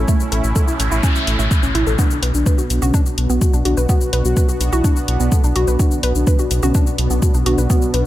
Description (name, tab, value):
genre	melodic techno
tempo	126 BPM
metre	4/4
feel	straight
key	B minor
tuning	A4 = 439 Hz
part	sweeping resonant pad	sustained chords	0.0-8.1 s	A3 to F#4	-26 LUFS	right 1 dB	chorus, sidechain pumping
part	round analog bass	bass	0.0-8.0 s	A1 to B1	-18 LUFS	equal	tube saturation, sidechain pumping
part	overtone-sweeping drone	drone	0.0-8.1 s	B2	-30 LUFS	equal	none
part	woody wave-folded pluck	arpeggios	0.1-8.0 s	A3 to B4	-24 LUFS	equal	chorus, sidechain pumping, ping-pong delay
part	electronic kick drum	drums	0.1-7.8 s	none	-16 LUFS	equal	studio reverb
part	electronic shaker and hi-hat	drums	0.1-8.0 s	none	-26 LUFS	left 4 dB	studio reverb
part	noise sweep	sound effects	0.5-2.0 s	none	-26 LUFS	equal	none
part	soft octave-layered synth lead	melody	2.0-7.9 s	C#4 to A4	-24 LUFS	left 2 dB	chorus, tremolo, sidechain pumping, digital delay
room	little or no reverb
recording	none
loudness	-14 LUFS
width	side -14 dB against mid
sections	0.0-8.1 A section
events	noise sweep 0.5-2.0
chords	0.0 A; 2.0 Bm